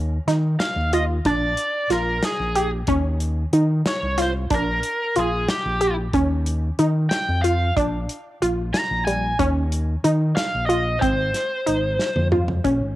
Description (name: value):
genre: progressive instrumental, band music in an uneven meter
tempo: 184 BPM (eighths)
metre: 5/8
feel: straight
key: Bb dorian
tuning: A4 = 440 Hz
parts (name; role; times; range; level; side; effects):
- wide unison pluck; arpeggios; 0.0-13.0 s; G3 to G4; -22 LUFS; equal; cassette tape
- overdriven fingered electric bass; bass; 0.0-13.0 s; Ab1 to Eb3; -23 LUFS; equal; none
- warm soul drum kit; drums; 0.3-12.8 s; hi-hat, kick drum, snare drum, toms; -27 LUFS; equal; cassette tape
- biting lead guitar; melody; 0.6-12.3 s; G4 to Bb5; -24 LUFS; equal; overdrive, cassette tape, analog delay
room: light reverb, studio ambience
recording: home recording on cassette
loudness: -19 LUFS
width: side -15 dB against mid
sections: 0.0-12.6 A section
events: drum fill 12.0-12.6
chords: 0.0 Dbadd9/Eb (rootless); 1.3 Bb; 2.9 Dbmaj9; 4.5 Bb; 6.1 Eb9; 7.8 Bb; 9.4 Eb5; 11.0 Ab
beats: 0.28 0.60 0.93 | 1.25 1.58 1.91 2.23 2.56 | 2.88 3.21 3.54 3.86 4.19 | 4.51 4.84 5.17 5.49 5.82 | 6.14 6.47 6.79 7.12 7.44 | 7.77 8.09 8.42 8.74 9.07 | 9.39 9.72 10.04 10.37 10.70 | 11.02 11.35 11.67 12.00 12.32 | 12.65